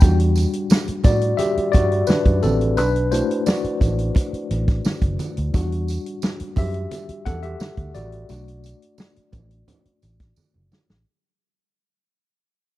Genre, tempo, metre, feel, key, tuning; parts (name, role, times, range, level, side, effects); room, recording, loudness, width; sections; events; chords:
lush 1970s-style soul; 87 BPM; 4/4; straight; E minor; A4 = 440 Hz
tine electric piano; accompaniment; 0.0-11.1 s; G3 to G5; -23 LUFS; left 2 dB; overdrive, fast stereo tremolo
vintage muted fingered electric bass; bass; 0.0-11.0 s; F#1 to A2; -22 LUFS; equal
vintage drum kit; drums; 0.0-11.1 s; hi-hat, kick drum, snare drum; -17 LUFS; equal
congas; percussion; 0.0-10.9 s; -32 LUFS; right 4 dB
tambourine; percussion; 0.0-10.9 s; -39 LUFS; right 8 dB
small room reverb; dry, close 1970s-style studio recording; -18 LUFS; side -16 dB against mid
0.0-11.1 A section
fade-out 0.0-11.1; tine electric piano solo 0.0-11.1; drum fill 10.4-11.1
0.0 Em9; 2.8 Bm7; 5.5 Em9; 8.3 Bm7